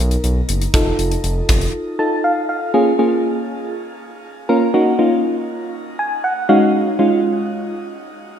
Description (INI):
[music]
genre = synth-pop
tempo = 120 BPM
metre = 4/4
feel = straight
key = unclear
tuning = A4 = 440 Hz
[part]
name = mellow FM electric piano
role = accompaniment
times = 0.0-7.7 s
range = Ab3 to A5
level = -16 LUFS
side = equal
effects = chorus, shimmer reverb
[part]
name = smooth synth bass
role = bass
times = 0.0-1.7 s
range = F1 to Cb2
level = -18 LUFS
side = equal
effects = none
[part]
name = gated 80s drum kit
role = drums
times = 0.1-1.7 s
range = hi-hat, kick drum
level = -18 LUFS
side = equal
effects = none
[sound]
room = wet lush hall reverb, RT60 1.6 s, small room ambience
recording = bright 1980s-style digital production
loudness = -15 LUFS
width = side -9 dB against mid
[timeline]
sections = 0.0-2.7 A section; 2.7-8.4 B section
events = break 1.7-2.7; FM electric piano fill 1.7-2.7, 5.7-6.7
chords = 0.0 Cbmaj7; 0.7 F7; 2.7 Bbm7; 4.7 Ebm7; 6.5 Ab7sus4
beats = 0.24 | 0.74 1.24 1.74 2.24 | 2.74 3.24 3.74 4.24 | 4.74 5.24 5.74 6.24 | 6.74 7.24